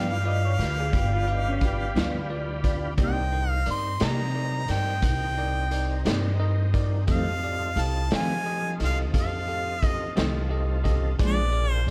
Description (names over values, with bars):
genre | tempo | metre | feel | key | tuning
slow blues | 58 BPM (dotted quarters) | 12/8 | straight | unclear | A4 = 439 Hz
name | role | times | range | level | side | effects
bright harmonica | melody | 0.0-11.9 s | D5 to C6 | -32 LUFS | equal | overdrive
electric guitar through a small old amp | second line | 0.0-2.0 s | Db4 to F5 | -36 LUFS | equal | tape echo
bell-like tine electric piano | accompaniment | 0.0-11.9 s | Eb4 to F5 | -38 LUFS | equal | none
mellow electric guitar | accompaniment | 0.0-11.4 s | F2 to G4 | -32 LUFS | equal | tremolo
tonewheel organ | sustained chords | 0.0-11.9 s | Bb3 to B4 | -40 LUFS | equal | slow rotary speaker, chorus vibrato
upright bass | bass | 0.0-11.9 s | G1 to F3 | -29 LUFS | equal | none
raw garage drum kit | drums | 0.6-11.9 s | hi-hat, kick drum, snare drum | -32 LUFS | equal | none
room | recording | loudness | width
light reverb | none | -26 LUFS | mono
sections
0.0-11.9 A section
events
none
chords
0.0 G7; 3.0 Cm7; 7.1 F7; 11.2 Bb7